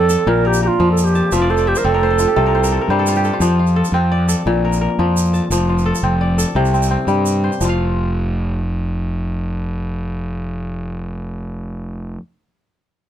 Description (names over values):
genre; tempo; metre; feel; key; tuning
west african traditional, West African string and xylophone music; 115 BPM (dotted quarters); 12/8; straight; F major; A4 = 440 Hz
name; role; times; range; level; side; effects
hollow wooden flute; melody; 0.0-2.9 s; F4 to Bb4; -17 LUFS; right 5 dB; none
kora; arpeggios; 0.0-12.3 s; Bb2 to A5; -19 LUFS; left 2 dB; none
fuzz fingered electric bass; bass; 0.0-12.2 s; F1 to G2; -18 LUFS; equal; overdrive
tube shaker; percussion; 0.1-7.8 s; none; -28 LUFS; right 5 dB; none
room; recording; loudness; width
little or no reverb; close, detailed microphones; -15 LUFS; side -10 dB against mid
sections
0.0-7.6 A section; 7.6-11.8 B section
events
kora fill 1.3-3.4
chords
0.3 Bb; 1.3 F; 2.4 C5; 3.4 F; 4.5 Bb; 5.5 F; 6.6 C5; 7.6 F5